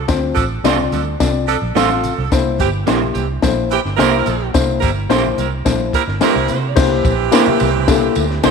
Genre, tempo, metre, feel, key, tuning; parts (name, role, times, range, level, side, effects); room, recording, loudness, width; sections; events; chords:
uptempo 1960s-style soul; 108 BPM; 4/4; straight; A4 = 444 Hz
edgy saxophone section; second line; 0.0-8.5 s; E3 to Bb4; -21 LUFS; right 12 dB
vintage muted fingered electric bass; bass; 0.0-8.5 s; G1 to C3; -21 LUFS; right 2 dB
tine electric piano; accompaniment; 0.1-8.5 s; Bb3 to F5; -19 LUFS; left 10 dB
compact cocktail drum kit; drums; 0.1-8.5 s; crash cymbal, hi-hat, kick drum, ride cymbal, snare drum; -19 LUFS; left 3 dB
congas; percussion; 0.1-8.5 s; -31 LUFS; right 12 dB
tambourine; percussion; 0.1-8.5 s; -31 LUFS; right 15 dB
electric guitar through a small old amp; stabs; 0.6-8.5 s; A3 to C5; -20 LUFS; right 14 dB
light reverb, studio ambience; 1960s-style stereo with parts hard left and right; -13 LUFS; side -5 dB against mid
0.0-6.8 A section; 6.8-8.5 B section
0.0 Dm7; 2.3 C7